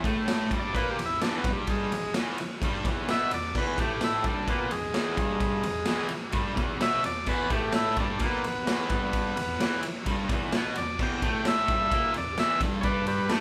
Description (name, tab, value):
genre	garage rock duo or trio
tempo	129 BPM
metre	4/4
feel	straight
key	unclear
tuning	A4 = 440 Hz
part	fuzz guitar	riff	0.0-13.4 s	E2 to B3	-32 LUFS	equal	distortion
part	raw garage drum kit	drums	0.0-13.4 s	crash cymbal, kick drum, ride cymbal, snare drum	-32 LUFS	equal	none
part	overdriven combo organ	melody	0.6-13.4 s	G3 to G5	-32 LUFS	equal	none
room	moderate large studio reverb, RT60 0.9 s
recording	band playing live in one room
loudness	-28 LUFS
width	mono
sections	0.0-13.4 A section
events	transistor combo organ solo 0.0-13.4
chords	0.0 E5